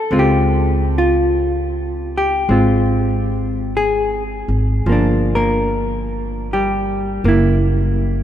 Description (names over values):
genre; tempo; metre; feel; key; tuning
jazz ballad; 50 BPM; 4/4; swing 68% on 8ths; unclear; A4 = 440 Hz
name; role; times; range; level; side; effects
hollow-body jazz guitar; accompaniment; 0.0-8.2 s; D3 to Bb4; -17 LUFS; equal; none
upright bass; bass; 0.1-8.2 s; F#1 to Db2; -19 LUFS; equal; none
room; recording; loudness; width
wet cathedral reverb, RT60 5.1 s; in a vast, echoing space; -15 LUFS; side -10 dB against mid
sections
0.0-8.2 A section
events
none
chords
0.1 Dbmaj7; 4.9 Gm7; 7.2 F#7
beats
| 0.12 1.30 2.50 3.69 | 4.87 6.06 7.25